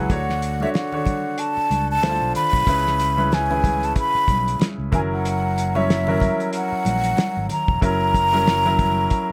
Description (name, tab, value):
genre	lush 1970s-style soul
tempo	93 BPM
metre	4/4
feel	swing 58% on 16ths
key	unclear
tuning	A4 = 440 Hz
part	breathy mellow concert flute	melody	0.0-9.3 s	E5 to B5	-24 LUFS	equal	plate reverb
part	clear baby grand piano	accompaniment	0.0-9.3 s	C#3 to A5	-27 LUFS	equal	plate reverb
part	fingered electric bass	bass	0.0-9.1 s	E1 to D2	-28 LUFS	equal	none
part	cloth-damped thuddy drum kit	drums	0.1-9.3 s	hi-hat, kick drum, snare drum	-24 LUFS	equal	none
part	congas	percussion	0.1-9.0 s	none	-33 LUFS	equal	none
room	moderate booth ambience, RT60 0.3 s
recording	none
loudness	-20 LUFS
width	mono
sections	0.1-9.3 A section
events	none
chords	0.1 Dmaj7; 2.0 Dm7; 2.7 C#m7; 4.9 F#7